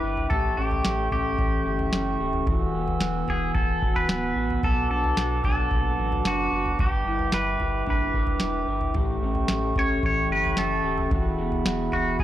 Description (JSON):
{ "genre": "dream pop", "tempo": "111 BPM", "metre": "4/4", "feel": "straight", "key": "unclear", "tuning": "A4 = 436 Hz", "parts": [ { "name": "pedal steel guitar", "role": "melody", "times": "0.0-12.2 s", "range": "F#4 to C#5", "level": "-28 LUFS", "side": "equal", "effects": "tape echo" }, { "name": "glass harmonica", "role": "sustained chords", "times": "0.0-12.2 s", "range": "G#4 to E6", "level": "-30 LUFS", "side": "right 1 dB", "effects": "none" }, { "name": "electric guitar at the edge of break-up", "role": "arpeggios", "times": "0.0-12.2 s", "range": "A2 to B4", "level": "-29 LUFS", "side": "left 1 dB", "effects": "wide subtle chorus, tape echo" }, { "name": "saturated sub bass", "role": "bass", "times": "0.0-12.2 s", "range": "D1 to B1", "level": "-30 LUFS", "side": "equal", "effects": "none" }, { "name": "booming analog drum machine", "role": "drums", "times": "0.2-12.2 s", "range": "kick drum, snare drum, toms", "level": "-27 LUFS", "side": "equal", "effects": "none" } ], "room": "light reverb, digital ambience", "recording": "dry, gritty hardware recording", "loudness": "-22 LUFS", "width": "side -13 dB against mid", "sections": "0.0-12.2 A section", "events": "none", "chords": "0.3 A7; 2.5 Eadd9; 4.6 Bm7; 6.8 G6; 9.0 A7; 11.1 Eadd9", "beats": "| 0.31 0.85 1.39 1.93 | 2.47 3.01 3.55 4.09 | 4.63 5.17 5.71 6.25 | 6.79 7.33 7.87 8.41 | 8.96 9.50 10.04 10.58 | 11.12 11.66 12.20" }